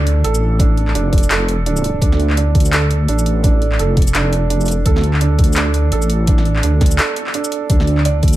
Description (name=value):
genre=half-time drum and bass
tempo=169 BPM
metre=4/4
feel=swing 58% on 16ths, half-time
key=unclear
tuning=A4 = 440 Hz
part: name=felt-muted upright piano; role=arpeggios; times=0.0-8.4 s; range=D4 to D5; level=-21 LUFS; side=right 5 dB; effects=vintage 12-bit sampler grit, tape echo
part: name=deep soft wobble bass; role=bass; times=0.0-8.4 s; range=F1 to D2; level=-15 LUFS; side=equal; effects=chorus
part: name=drum and bass drum kit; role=drums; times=0.1-8.4 s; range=handclaps, hi-hat, shaker, snare drum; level=-22 LUFS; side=left 1 dB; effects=overdrive
part: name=electronic kick drum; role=drums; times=0.6-8.3 s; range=none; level=-14 LUFS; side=equal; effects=overdrive
room=light reverb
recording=none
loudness=-13 LUFS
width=side -15 dB against mid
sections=0.0-8.4 A section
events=break 7.0-7.7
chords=0.0 Dm